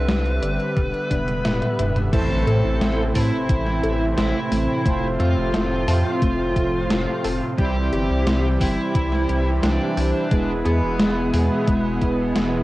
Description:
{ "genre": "synthwave", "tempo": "88 BPM", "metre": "4/4", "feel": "straight", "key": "A minor", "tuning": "A4 = 440 Hz", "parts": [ { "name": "dark smooth lead guitar", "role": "melody", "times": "0.0-12.6 s", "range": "B3 to B4", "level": "-27 LUFS", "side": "equal", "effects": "overdrive, cassette tape, tape echo" }, { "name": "soft supersaw", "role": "sustained chords", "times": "0.0-12.6 s", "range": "A2 to E5", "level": "-26 LUFS", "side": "equal", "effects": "sidechain pumping, cassette tape" }, { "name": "round analog bass", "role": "bass", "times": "0.0-12.6 s", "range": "E1 to A2", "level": "-23 LUFS", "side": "equal", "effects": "tube saturation" }, { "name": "wide unison pluck", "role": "arpeggios", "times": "0.1-12.6 s", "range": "G3 to A5", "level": "-30 LUFS", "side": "left 1 dB", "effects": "cassette tape, tape echo, plate reverb" }, { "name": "gated 80s digital drum machine", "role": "drums", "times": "0.1-12.5 s", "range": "crash cymbal, hi-hat, snare drum, toms", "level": "-26 LUFS", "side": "equal", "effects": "gated reverb, gated reverb snare, overdrive, cassette tape" }, { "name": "electronic kick drum", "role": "drums", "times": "0.8-12.2 s", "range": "none", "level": "-22 LUFS", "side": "equal", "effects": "overdrive, cassette tape" }, { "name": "analog synth brass", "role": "stabs", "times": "2.1-12.6 s", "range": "G3 to C5", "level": "-25 LUFS", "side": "right 1 dB", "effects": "chorus, vintage 12-bit sampler grit, cassette tape, plate reverb" }, { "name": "impact", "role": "sound effects", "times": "2.2-4.9 s", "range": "none", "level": "-32 LUFS", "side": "equal", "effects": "none" } ], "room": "moderate small room reverb, RT60 0.5 s", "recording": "home recording on cassette", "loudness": "-18 LUFS", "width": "side -17 dB against mid", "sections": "0.0-2.1 A section; 2.1-12.6 B section", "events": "drum fill 1.1-2.1; impact 2.1-4.9", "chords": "0.0 Cadd9; 0.8 Em7; 2.1 Am; 4.9 F; 7.6 C; 10.3 E" }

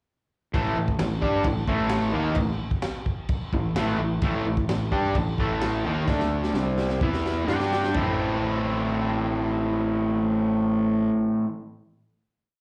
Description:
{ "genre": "garage rock duo or trio", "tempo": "129 BPM", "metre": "4/4", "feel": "straight", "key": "A minor", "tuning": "A4 = 440 Hz", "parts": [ { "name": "raw garage guitar", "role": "riff", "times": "0.5-11.5 s", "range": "A2 to G4", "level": "-26 LUFS", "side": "equal", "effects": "overdrive, slapback echo" }, { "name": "fuzz fingered electric bass", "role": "bass", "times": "0.5-11.1 s", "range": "A1 to G2", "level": "-33 LUFS", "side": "equal", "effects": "overdrive" }, { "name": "crunchy breakbeat drum kit", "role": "drums", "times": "0.5-8.1 s", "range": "crash cymbal, kick drum, snare drum, toms", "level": "-31 LUFS", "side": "equal", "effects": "none" } ], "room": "light reverb", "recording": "live gig heard through the venue's PA, club reverb", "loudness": "-25 LUFS", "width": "mono", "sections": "0.5-7.9 riff; 7.9-11.7 final chord", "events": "drum fill 6.1-7.9", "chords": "0.5 A5; 6.1 D5; 6.5 C5; 7.0 E5; 7.5 G5; 7.9 Am" }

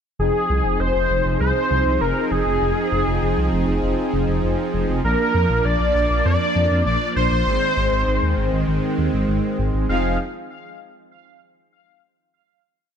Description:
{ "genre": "synthwave", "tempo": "99 BPM", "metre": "4/4", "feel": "straight", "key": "F dorian", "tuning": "A4 = 440 Hz", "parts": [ { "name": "wide unison lead", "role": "melody", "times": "0.2-10.2 s", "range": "Ab4 to F5", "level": "-22 LUFS", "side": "left 1 dB", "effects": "lush chorus, ping-pong delay" }, { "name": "soft supersaw", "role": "sustained chords", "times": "0.2-10.2 s", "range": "Eb3 to Ab4", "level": "-23 LUFS", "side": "right 1 dB", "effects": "none" }, { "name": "dark detuned saw bass", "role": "bass", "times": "0.2-10.2 s", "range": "F1 to F2", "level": "-22 LUFS", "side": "equal", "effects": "none" } ], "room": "light reverb", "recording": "none", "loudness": "-17 LUFS", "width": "side -7 dB against mid", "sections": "0.2-9.9 verse; 9.9-12.3 final chord", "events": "none", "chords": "0.2 Fm7; 5.0 Bb; 7.5 Ab; 9.9 Fm7" }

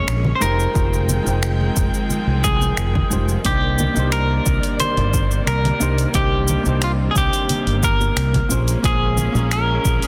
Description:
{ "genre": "sunset chillout", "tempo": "89 BPM", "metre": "4/4", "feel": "straight", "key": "C minor", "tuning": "A4 = 441 Hz", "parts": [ { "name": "clean electric guitar", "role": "melody", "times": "0.0-10.1 s", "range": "F4 to Db5", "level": "-25 LUFS", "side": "equal", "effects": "delay" }, { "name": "vintage hollow-body jazz guitar", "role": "accompaniment", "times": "0.0-10.1 s", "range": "Ab3 to G5", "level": "-30 LUFS", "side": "equal", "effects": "delay" }, { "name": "clear studio string section", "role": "sustained chords", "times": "0.0-10.1 s", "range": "C3 to G5", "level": "-29 LUFS", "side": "equal", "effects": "none" }, { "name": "mellow fretless electric bass", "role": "bass", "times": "0.1-10.0 s", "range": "F1 to C2", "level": "-22 LUFS", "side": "equal", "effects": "none" }, { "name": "deep house drum kit", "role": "drums", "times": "0.1-10.1 s", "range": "cabasa, finger snaps, hi-hat", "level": "-29 LUFS", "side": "equal", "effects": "soft clipping on snare" }, { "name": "congas", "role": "percussion", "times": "0.2-9.5 s", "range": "none", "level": "-28 LUFS", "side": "equal", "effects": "none" }, { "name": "electronic kick drum", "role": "drums", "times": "0.8-10.0 s", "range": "none", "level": "-24 LUFS", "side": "equal", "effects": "none" } ], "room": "light reverb", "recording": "dense, heavily limited modern master", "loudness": "-19 LUFS", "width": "mono", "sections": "0.0-10.1 A section", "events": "none", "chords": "0.4 Fm9; 3.5 Cm9; 8.5 Bbm9" }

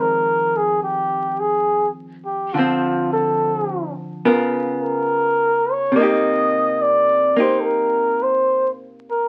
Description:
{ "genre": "jazz ballad", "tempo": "71 BPM", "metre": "4/4", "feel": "swing 68% on 8ths", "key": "F dorian", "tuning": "A4 = 441 Hz", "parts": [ { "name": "mellow flugelhorn", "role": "melody", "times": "0.0-9.3 s", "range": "F4 to Eb5", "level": "-20 LUFS", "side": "equal", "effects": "none" }, { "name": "archtop guitar, miked and amplified", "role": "accompaniment", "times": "0.0-9.3 s", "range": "F2 to Bb4", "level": "-24 LUFS", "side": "equal", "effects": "none" } ], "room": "moderate club reverb, RT60 0.5 s", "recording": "very old 78 rpm record, vinyl crackle", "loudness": "-19 LUFS", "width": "mono", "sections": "0.0-9.3 A section", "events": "none", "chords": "0.0 Fm7; 2.5 Dm7; 4.2 Db6; 5.9 Cm7" }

